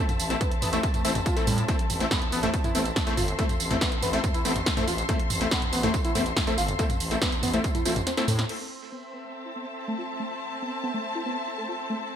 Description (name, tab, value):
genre	driving peak-time techno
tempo	141 BPM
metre	4/4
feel	straight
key	A minor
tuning	A4 = 444 Hz
part	overdriven synth lead	riff	0.0-11.9 s	G3 to A4	-32 LUFS	equal	chorus, tube saturation, sidechain pumping, ping-pong delay
part	rave stab	stabs	0.0-8.2 s	A3 to E4	-30 LUFS	left 2 dB	chorus, built-in reverb, sidechain pumping, ping-pong delay
part	warm chamber string section	texture	0.0-12.2 s	C4 to C6	-33 LUFS	left 2 dB	sidechain pumping
part	punchy analog drum machine	drums	0.1-8.6 s	crash cymbal, hi-hat, snare drum, tambourine, toms	-29 LUFS	right 2 dB	sidechain pumping on hats, sidechain pumping on perc, sidechain pumping on toms, sidechain pumping on cymbals, gated reverb
part	growling FM bass	bass	0.2-8.4 s	G1 to A2	-30 LUFS	equal	sidechain pumping
part	electronic kick drum	drums	0.4-7.7 s	none	-28 LUFS	equal	overdrive
room	moderate lush hall reverb, RT60 1.6 s, digital ambience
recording	bright 1980s-style digital production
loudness	-24 LUFS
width	side -9 dB against mid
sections	0.0-8.5 A section; 8.5-12.2 B section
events	kick drops out 8.1-8.5; drum fill 8.1-8.5; filter sweep on analog synth lead 8.5-12.2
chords	0.0 Am